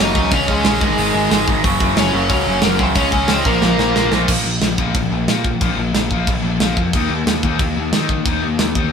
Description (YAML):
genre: punk rock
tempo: 181 BPM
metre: 4/4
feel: straight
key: unclear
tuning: A4 = 440 Hz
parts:
  - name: bluesy overdriven lead guitar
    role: melody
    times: 0.0-4.1 s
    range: Ab3 to Eb5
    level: -20 LUFS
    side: left 2 dB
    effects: distortion
  - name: cranked stack guitar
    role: riff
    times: 0.0-4.3 s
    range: Gb2 to Db4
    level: -19 LUFS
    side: right 3 dB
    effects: overdrive
  - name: tight distorted guitar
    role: riff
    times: 0.0-8.9 s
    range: Gb2 to Eb4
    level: -22 LUFS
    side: left 6 dB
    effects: distortion
  - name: fuzz picked electric bass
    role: bass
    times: 0.0-8.9 s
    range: Gb1 to Eb3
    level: -22 LUFS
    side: equal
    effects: overdrive
  - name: tight metal drum kit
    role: drums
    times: 0.2-8.8 s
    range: crash cymbal, hi-hat, kick drum, snare drum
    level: -18 LUFS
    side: right 1 dB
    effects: none
room: light reverb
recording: band playing live in one room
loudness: -14 LUFS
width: side -6 dB against mid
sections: 0.0-4.3 A section; 4.3-8.9 B section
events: drum fill 3.6-4.3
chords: 0.3 Db5; 0.8 Ab5; 1.6 Gb; 3.0 Db5; 3.5 Bb5; 6.9 Eb5